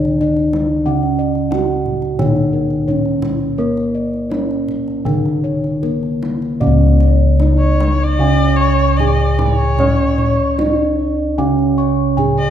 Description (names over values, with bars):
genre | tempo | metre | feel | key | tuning
Javanese gamelan | 75-92 BPM | 4/4 | straight | C# pelog barang | A4 = 440 Hz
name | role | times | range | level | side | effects
gamelan-type bronze metallophone | melody | 0.0-12.5 s | A#3+20c to C#5 | -19 LUFS | equal | none
gamelan-type bronze metallophone | accompaniment | 0.0-12.5 s | C#3 to C#4 | -20 LUFS | right 4 dB | none
gamelan-type bossed gongs | arpeggios | 0.0-12.5 s | A#4+20c to C#6 | -24 LUFS | left 2 dB | none
gamelan-type bossed gongs | bass | 0.0-12.5 s | C#2 to C#5 | -18 LUFS | left 2 dB | none
kendang | percussion | 0.1-12.4 s | none | -24 LUFS | right 1 dB | none
gamelan-type bronze metallophone | arpeggios | 6.6-12.5 s | C#5 to C#6 | -24 LUFS | right 8 dB | none
warm erhu | second line | 7.6-12.5 s | C#5 to D#5-49c | -21 LUFS | left 3 dB | none
room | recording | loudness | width
wet concert hall reverb, RT60 1.9 s | minimal, uncompressed stereo recording | -13 LUFS | side -10 dB against mid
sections
0.0-6.6 A section; 6.6-12.5 B section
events
none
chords
none